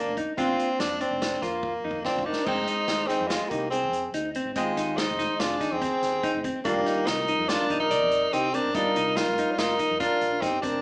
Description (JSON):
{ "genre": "progressive instrumental, band music in an uneven meter", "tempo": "143 BPM", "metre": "5/4", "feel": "straight", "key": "F dorian", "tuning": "A4 = 440 Hz", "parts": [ { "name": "edgy tenor saxophone", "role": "melody", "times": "0.0-10.8 s", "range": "Ab3 to F4", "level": "-27 LUFS", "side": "equal", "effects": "none" }, { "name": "archtop guitar, miked and amplified", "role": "accompaniment", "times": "0.0-10.8 s", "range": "Eb3 to G5", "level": "-34 LUFS", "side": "equal", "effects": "none" }, { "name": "clean electric guitar", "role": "arpeggios", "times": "0.0-10.8 s", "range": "C4 to D5", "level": "-29 LUFS", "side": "equal", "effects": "slapback echo" }, { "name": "woody fretless electric bass", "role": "bass", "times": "0.1-10.8 s", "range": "F1 to F2", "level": "-40 LUFS", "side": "equal", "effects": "none" }, { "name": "swinging big-band drum kit", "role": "drums", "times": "0.2-10.7 s", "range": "crash cymbal, hi-hat, kick drum, snare drum", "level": "-34 LUFS", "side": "equal", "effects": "none" }, { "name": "breathy flugelhorn", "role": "second line", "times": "2.0-10.8 s", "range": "F4 to D5", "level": "-31 LUFS", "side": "equal", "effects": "none" } ], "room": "wet large studio reverb, RT60 0.8 s", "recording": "band playing live in one room, small speaker sound", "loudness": "-23 LUFS", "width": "side -30 dB against mid", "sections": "0.0-2.5 A section; 2.5-10.8 B section", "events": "drum fill 1.6-2.5", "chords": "0.0 Bbadd9/F; 2.5 Fm7; 6.7 Ebadd9/F" }